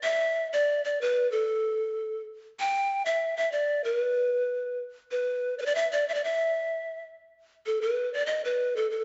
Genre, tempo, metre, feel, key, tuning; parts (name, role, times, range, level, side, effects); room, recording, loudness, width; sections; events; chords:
andean folk; 95 BPM; 2/4; straight; E minor pentatonic; A4 = 440 Hz
breathy hollow large pan pipes; solo; 0.0-9.0 s; A4 to G5; -28 LUFS; equal
moderate recital hall reverb, RT60 1.4 s; nothing above 7.8 kHz; -28 LUFS; mono
0.0-7.6 A section; 7.6-9.0 B section